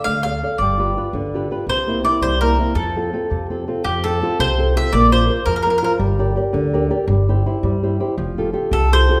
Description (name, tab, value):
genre	italian folk, Italian serenade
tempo	111 BPM (dotted quarters)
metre	6/8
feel	straight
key	F major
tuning	A4 = 438 Hz
part	mandolin	melody	0.0-5.9, 8.7-9.2 s	G4 to F5	-22 LUFS	equal	none
part	flamenco guitar	accompaniment	0.0-9.2 s	C3 to F5	-23 LUFS	equal	none
part	upright bass	bass	0.1-9.1 s	F1 to G2	-23 LUFS	equal	none
room	wet recital hall reverb, RT60 1.5 s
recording	none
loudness	-19 LUFS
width	mono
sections	0.0-3.8 A section; 3.8-9.2 B section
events	none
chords	0.0 Dm; 0.6 G7; 1.7 C7; 2.8 F; 4.9 Bbsus2; 6.0 Gm; 7.1 C/G; 8.2 Fadd9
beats	0.06 | 0.60 1.13 | 1.67 2.21 | 2.75 3.30 | 3.85 4.39 | 4.93 5.47 | 6.01 6.55 | 7.08 7.63 | 8.17 8.72